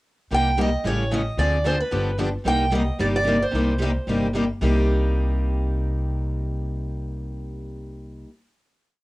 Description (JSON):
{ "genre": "acoustic string swing (jazz manouche)", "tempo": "223 BPM", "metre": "4/4", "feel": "swing 56% on 8ths", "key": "C minor", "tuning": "A4 = 441 Hz", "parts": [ { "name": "picked steel-string acoustic guitar", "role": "melody", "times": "0.3-4.3 s", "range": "B4 to G5", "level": "-24 LUFS", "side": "right 1 dB", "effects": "none" }, { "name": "picked steel-string acoustic guitar", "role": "accompaniment", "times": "0.3-8.3 s", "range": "C3 to Ab4", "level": "-27 LUFS", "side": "left 2 dB", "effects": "cassette tape" }, { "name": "picked steel-string acoustic guitar", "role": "accompaniment", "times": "0.3-8.3 s", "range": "C3 to A4", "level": "-30 LUFS", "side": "right 3 dB", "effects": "cassette tape" }, { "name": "upright bass", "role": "bass", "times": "0.3-8.2 s", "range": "G1 to D2", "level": "-24 LUFS", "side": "equal", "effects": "none" } ], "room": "moderate small room reverb, RT60 0.5 s", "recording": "home recording on cassette", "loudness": "-20 LUFS", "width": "side -19 dB against mid", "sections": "0.3-4.6 A section; 4.6-6.8 final chord", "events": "none", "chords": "0.3 Cm7; 0.8 A7; 1.4 Dm7b5; 1.9 G7; 2.5 Cm7", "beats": "| 0.31 0.58 0.85 1.12 | 1.39 1.66 1.92 2.19 | 2.46 2.73 3.00 3.27 | 3.54 3.81 4.08 4.34 | 4.62 4.88 5.16 5.43 | 5.70 5.97 6.24 6.51" }